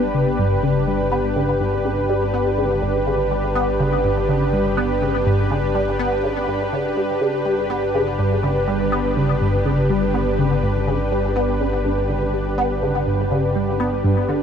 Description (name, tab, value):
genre	ambient, sequencer-driven space music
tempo	123 BPM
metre	4/4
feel	straight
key	G lydian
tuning	A4 = 440 Hz
part	lush unison pad	sustained chords	0.0-14.4 s	D4 to B4	-21 LUFS	right 1 dB	chorus
part	resonant blip pluck	riff	0.0-14.4 s	G2 to B3	-21 LUFS	left 1 dB	phaser, ensemble chorus, ping-pong delay
part	fat analog bass	bass	0.0-14.4 s	G1	-26 LUFS	equal	none
room	moderate huge ambient reverb, RT60 9.5 s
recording	none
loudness	-17 LUFS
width	side -7 dB against mid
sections	0.0-14.4 A section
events	none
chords	0.0 G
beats	0.14 0.63 | 1.12 1.60 2.09 2.58 | 3.07 3.56 4.04 4.53 | 5.02 5.51 6.00 6.48 | 6.97 7.46 7.95 8.43 | 8.92 9.41 9.90 10.38 | 10.87 11.36 11.85 12.34 | 12.82 13.31 13.80 14.29